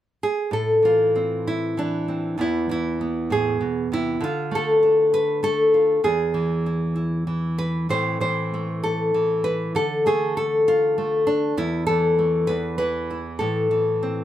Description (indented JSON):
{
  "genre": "folk, solo fingerstyle acoustic guitar",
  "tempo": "65 BPM (dotted quarters)",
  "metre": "6/8",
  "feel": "rubato",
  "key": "A harmonic minor",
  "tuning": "A4 = 440 Hz",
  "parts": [
    { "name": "nylon-string guitar", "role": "solo", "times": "0.2-14.2 s", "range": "E2 to C5", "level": "-20 LUFS", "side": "equal", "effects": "none" }
  ],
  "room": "moderate studio ambience, RT60 0.5 s",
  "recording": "none",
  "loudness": "-20 LUFS",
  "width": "side -12 dB against mid",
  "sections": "0.5-14.2 A section",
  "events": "none",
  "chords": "0.0 N.C.; 0.5 Am; 2.4 E; 4.2 Dm; 6.0 N.C.; 7.9 Am; 9.7 Dm; 11.6 Esus4; 12.5 N.C.; 13.4 Am",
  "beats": "| 0.52 1.46 | 2.39 3.32 | 4.22 5.13 | 6.04 6.96 | 7.90 8.83 | 9.75 10.66 | 11.57 12.48 | 13.40"
}